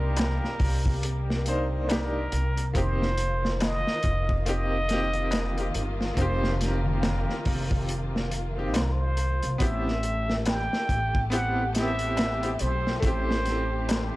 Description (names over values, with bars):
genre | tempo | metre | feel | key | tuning
trip hop | 70 BPM | 4/4 | swing 59% on 16ths | unclear | A4 = 442 Hz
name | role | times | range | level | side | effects
trumpet with plunger mute | melody | 0.0-14.0 s | Bb4 to G5 | -31 LUFS | right 1 dB | tape echo
bright upright piano | accompaniment | 0.0-14.2 s | A3 to C5 | -32 LUFS | equal | tremolo, vintage 12-bit sampler grit, tape echo
dark symphonic string section | sustained chords | 0.0-14.2 s | C3 to G4 | -37 LUFS | left 1 dB | vintage 12-bit sampler grit
upright bass | bass | 0.0-14.1 s | F1 to C2 | -28 LUFS | equal | none
crunchy breakbeat drum kit | drums | 0.2-14.1 s | hi-hat, kick drum, snare drum | -29 LUFS | equal | none
darbuka | percussion | 0.2-14.1 s | none | -37 LUFS | left 3 dB | none
room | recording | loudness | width
little or no reverb | dark, warm production | -24 LUFS | side -18 dB against mid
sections
0.0-14.2 A section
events
none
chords
0.0 Cm7; 2.7 F7sus4; 9.6 Am7